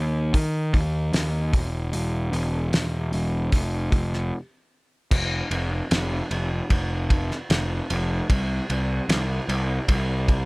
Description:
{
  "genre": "psychedelic rock",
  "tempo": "75 BPM",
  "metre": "4/4",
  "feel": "straight",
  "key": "unclear",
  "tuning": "A4 = 438 Hz",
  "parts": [
    { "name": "fuzz picked electric bass", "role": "bass", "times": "0.0-10.5 s", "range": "E1 to Eb3", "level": "-24 LUFS", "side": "equal", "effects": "overdrive" },
    { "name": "cloth-damped thuddy drum kit", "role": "drums", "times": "0.3-10.5 s", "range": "crash cymbal, hi-hat, kick drum, ride cymbal, snare drum", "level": "-24 LUFS", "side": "equal", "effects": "none" }
  ],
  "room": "little or no reverb",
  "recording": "none",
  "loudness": "-22 LUFS",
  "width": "side -27 dB against mid",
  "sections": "0.0-5.1 A section; 5.1-10.5 B section",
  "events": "break 4.3-5.1",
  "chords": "none"
}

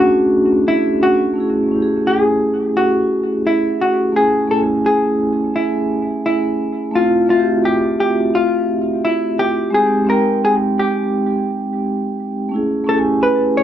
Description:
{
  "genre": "hip hop",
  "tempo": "86 BPM",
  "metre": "4/4",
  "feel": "swing 61% on 16ths",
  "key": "F# dorian",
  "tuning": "A4 = 441 Hz",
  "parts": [
    { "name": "vintage hollow-body jazz guitar", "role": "melody", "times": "0.0-13.6 s", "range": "E4 to C#5", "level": "-17 LUFS", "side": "left 1 dB", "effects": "low-pass filter" },
    { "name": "vibraphone with soft mallets", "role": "accompaniment", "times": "0.0-13.6 s", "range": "G#3 to G#5", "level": "-17 LUFS", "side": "right 1 dB", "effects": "cassette tape, low-pass filter" }
  ],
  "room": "wet small room reverb, RT60 0.5 s",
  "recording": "cassette tape",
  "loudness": "-14 LUFS",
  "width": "side -10 dB against mid",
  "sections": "0.0-1.4 A section; 1.4-13.6 B section",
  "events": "none",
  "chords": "0.0 Bm7 (rootless); 1.4 F#m9; 6.9 Fmaj9/A; 9.7 G#maj7; 12.5 Amaj9"
}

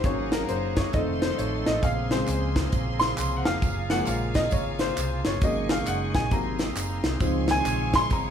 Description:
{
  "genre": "uptempo gospel",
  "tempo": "134 BPM",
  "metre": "4/4",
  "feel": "swing 63% on 8ths",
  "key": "unclear",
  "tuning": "A4 = 439 Hz",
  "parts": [
    { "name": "warm upright piano", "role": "accompaniment", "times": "0.0-8.3 s", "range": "C3 to C6", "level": "-27 LUFS", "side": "left 1 dB", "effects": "none" },
    { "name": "bright studio string section", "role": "sustained chords", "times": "0.0-8.3 s", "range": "C5 to Db6", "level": "-38 LUFS", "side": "equal", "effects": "none" },
    { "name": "bright tonewheel organ", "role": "sustained chords", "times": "0.0-8.3 s", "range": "Db3 to A4", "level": "-32 LUFS", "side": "right 1 dB", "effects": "slow rotary speaker" },
    { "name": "hollow-body short-scale fingered electric bass", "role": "bass", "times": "0.0-8.3 s", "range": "F1 to Db2", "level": "-31 LUFS", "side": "right 1 dB", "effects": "none" },
    { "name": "crisp fusion drum kit", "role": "drums", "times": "0.0-8.2 s", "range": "hi-hat, kick drum, snare drum", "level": "-27 LUFS", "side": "equal", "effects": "none" },
    { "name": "tambourine and handclaps", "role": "percussion", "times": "1.8-8.2 s", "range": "none", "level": "-40 LUFS", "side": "right 3 dB", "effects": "none" }
  ],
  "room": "moderate large studio reverb, RT60 1.4 s",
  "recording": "band playing live in one room",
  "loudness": "-23 LUFS",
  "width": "side -8 dB against mid",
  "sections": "0.0-8.3 A section",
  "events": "upright piano solo 0.0-8.3",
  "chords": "0.0 Ab9sus4; 0.9 F7; 1.8 Bbm9; 3.6 Gbmaj9; 5.4 Ab7sus4; 6.3 Ab9; 7.2 Dbmaj7"
}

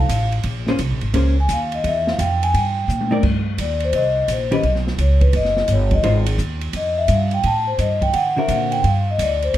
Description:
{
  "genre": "jazz, small-group swing and bop",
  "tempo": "171 BPM",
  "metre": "4/4",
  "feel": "swing 65% on 8ths",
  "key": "unclear",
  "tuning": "A4 = 440 Hz",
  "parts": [
    { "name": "vibraphone with soft mallets", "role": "melody", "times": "0.0-9.6 s", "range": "B4 to A5", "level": "-20 LUFS", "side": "left 1 dB", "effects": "none" },
    { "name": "hollow-body jazz guitar", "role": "accompaniment", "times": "0.0-6.2, 8.4-8.8 s", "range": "D3 to D5", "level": "-22 LUFS", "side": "left 1 dB", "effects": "none" },
    { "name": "upright bass", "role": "bass", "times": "0.0-9.6 s", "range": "F#1 to D3", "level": "-19 LUFS", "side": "equal", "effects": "none" },
    { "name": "open jazz drum kit", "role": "drums", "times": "0.1-9.6 s", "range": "crash cymbal, hi-hat, kick drum, ride cymbal, snare drum, toms", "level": "-26 LUFS", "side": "equal", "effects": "none" }
  ],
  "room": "light reverb",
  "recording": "none",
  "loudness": "-16 LUFS",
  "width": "side -12 dB against mid",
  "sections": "0.0-3.2 A section; 3.2-9.6 B section",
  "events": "drum fill 2.9-3.2; vibraphone solo 3.2-9.6",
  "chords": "0.4 Bbm9; 1.8 C7 (rootless); 3.2 Cm7; 4.6 Eb7alt; 6.0 Ab6; 7.4 A7(b5, no3); 8.1 D7b13; 8.8 G7(no3)"
}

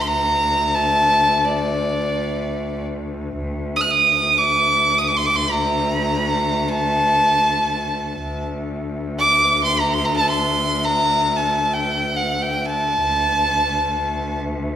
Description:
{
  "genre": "arabic",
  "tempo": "free time",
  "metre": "none",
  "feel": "none",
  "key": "D maqam hijaz",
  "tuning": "A4 = 435 Hz",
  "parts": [
    { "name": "clear violin", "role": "melody", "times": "0.0-14.4 s", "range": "D5 to F#6", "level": "-18 LUFS", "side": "right 1 dB", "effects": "none" },
    { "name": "clear cello", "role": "drone", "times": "0.0-14.8 s", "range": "D2", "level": "-24 LUFS", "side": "left 1 dB", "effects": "none" }
  ],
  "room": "wet recital hall reverb, RT60 1.4 s",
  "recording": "heard from further back in the room",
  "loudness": "-17 LUFS",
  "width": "side -10 dB against mid",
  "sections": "0.0-3.4 A section; 3.4-14.8 A section",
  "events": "none",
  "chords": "none"
}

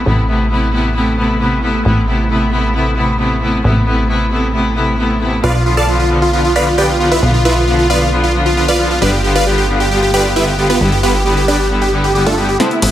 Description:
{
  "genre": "uplifting trance",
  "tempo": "134 BPM",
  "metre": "4/4",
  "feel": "straight",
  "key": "unclear",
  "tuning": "A4 = 439 Hz",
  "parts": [
    { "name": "plucky analog bass", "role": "bass", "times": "0.0-12.9 s", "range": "G1 to B1", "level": "-16 LUFS", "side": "equal", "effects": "tube saturation" },
    { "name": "impact and riser", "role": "sound effects", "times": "0.0-0.1, 12.6-12.9 s", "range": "none", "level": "barely audible", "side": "none", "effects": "none" },
    { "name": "rich chamber string section", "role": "sustained chords", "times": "0.1-12.9 s", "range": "C3 to F4", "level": "-16 LUFS", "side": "left 1 dB", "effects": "none" },
    { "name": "supersaw chords", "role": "melody", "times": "5.4-12.9 s", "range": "A3 to B5", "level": "-14 LUFS", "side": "right 1 dB", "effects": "low-pass filter, dub echo" },
    { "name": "wide unison pluck", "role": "arpeggios", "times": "12.6-12.9 s", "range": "A3 to C4", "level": "-28 LUFS", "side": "left 1 dB", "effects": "none" },
    { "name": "techno drum kit", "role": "drums", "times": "12.6-12.9 s", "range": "hi-hat, snare drum", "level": "-16 LUFS", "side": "equal", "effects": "overdrive, low-pass filter on snare, studio reverb, low-pass filter on hats, low-pass filter on perc" }
  ],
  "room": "moderate lush hall reverb, RT60 1.9 s, digital ambience",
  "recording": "heavily compressed radio sound",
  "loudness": "-11 LUFS",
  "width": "side -12 dB against mid",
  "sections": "0.0-12.6 A section",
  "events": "drum fill 12.6-12.9",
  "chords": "0.0 Amadd9; 5.4 Bdim; 9.0 G7"
}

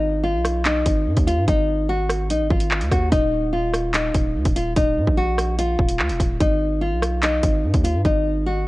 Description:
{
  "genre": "hip hop, drill",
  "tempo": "146 BPM",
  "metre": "4/4",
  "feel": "half-time",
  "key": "unclear",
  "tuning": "A4 = 435 Hz",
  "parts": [
    { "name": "nylon-string guitar", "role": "melody", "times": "0.0-8.7 s", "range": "Eb4 to Gb4", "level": "-22 LUFS", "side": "equal", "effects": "none" },
    { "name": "long sustained 808-style bass", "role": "bass", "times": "0.0-8.7 s", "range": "Eb1 to Bb2", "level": "-23 LUFS", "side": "equal", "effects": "none" },
    { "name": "drill drum kit", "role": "drums", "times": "0.4-8.1 s", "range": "handclaps, hi-hat, kick drum, rim click", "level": "-22 LUFS", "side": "equal", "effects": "none" }
  ],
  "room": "digital ambience",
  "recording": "worn, warbling old tape, cassette tape, warbly pitch drift",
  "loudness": "-18 LUFS",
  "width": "side -19 dB against mid",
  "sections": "0.0-8.7 A section",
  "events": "none",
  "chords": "0.0 Abm; 3.1 Eb5; 6.4 Abm"
}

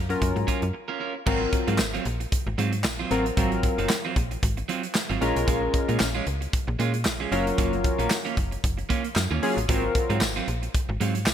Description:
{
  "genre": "early-eighties boogie funk",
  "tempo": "114 BPM",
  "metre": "4/4",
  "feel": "swing 56% on 16ths",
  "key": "unclear",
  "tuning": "A4 = 439 Hz",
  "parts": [
    { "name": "slap-like FM bass", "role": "bass", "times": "0.0-11.3 s", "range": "Gb1 to Bb2", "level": "-28 LUFS", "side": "equal", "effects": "none" },
    { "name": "chorused polysynth", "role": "accompaniment", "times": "0.1-10.2 s", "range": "Gb3 to Bb4", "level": "-27 LUFS", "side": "left 3 dB", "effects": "none" },
    { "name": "electric guitar at the edge of break-up", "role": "riff", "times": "0.1-11.3 s", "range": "Gb3 to Bb4", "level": "-30 LUFS", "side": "right 7 dB", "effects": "wide subtle chorus" },
    { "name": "modern studio drum kit", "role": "drums", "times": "0.1-11.3 s", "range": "crash cymbal, handclaps, hi-hat, kick drum, snare drum", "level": "-27 LUFS", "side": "equal", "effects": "none" },
    { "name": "tambourine", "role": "percussion", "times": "1.8-11.3 s", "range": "none", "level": "-38 LUFS", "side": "left 8 dB", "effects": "none" }
  ],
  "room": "moderate plate reverb, RT60 1.9 s, small room ambience",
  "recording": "bright 1980s-style digital production",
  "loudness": "-23 LUFS",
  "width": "side -9 dB against mid",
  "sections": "0.0-1.3 A section; 1.3-11.3 B section",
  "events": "break 0.7-1.3",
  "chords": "0.0 Gbmaj7; 1.3 Ab13; 5.2 Bbm7; 7.3 Gbmaj7; 9.7 Ab13"
}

